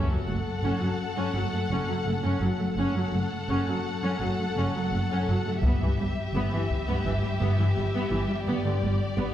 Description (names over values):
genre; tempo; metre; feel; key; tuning
cinematic, epic orchestral film score; 84 BPM; 4/4; straight; F# phrygian; A4 = 440 Hz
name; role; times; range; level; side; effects
warm studio violin section; melody; 0.0-9.3 s; D5 to F#5; -35 LUFS; left 3 dB; none
warm symphonic violin section; second line; 0.0-9.3 s; G4 to A4; -35 LUFS; left 4 dB; none
rich symphonic viola section; accompaniment; 0.0-9.3 s; D3 to C#4; -31 LUFS; equal; none
warm symphonic cello section; bass; 0.1-9.2 s; F#2 to G2; -29 LUFS; equal; none
rich symphonic double bass section; bass; 0.3-9.3 s; F#1 to G1; -31 LUFS; right 1 dB; none
taiko ensemble; drums; 5.6-7.0 s; none; -29 LUFS; equal; none
room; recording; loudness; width
wet scoring stage reverb, RT60 1.6 s; heard from further back in the room; -24 LUFS; side -11 dB against mid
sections
0.0-9.3 A section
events
build-up 0.0-9.3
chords
0.0 F#m; 5.6 Em/G; 8.5 G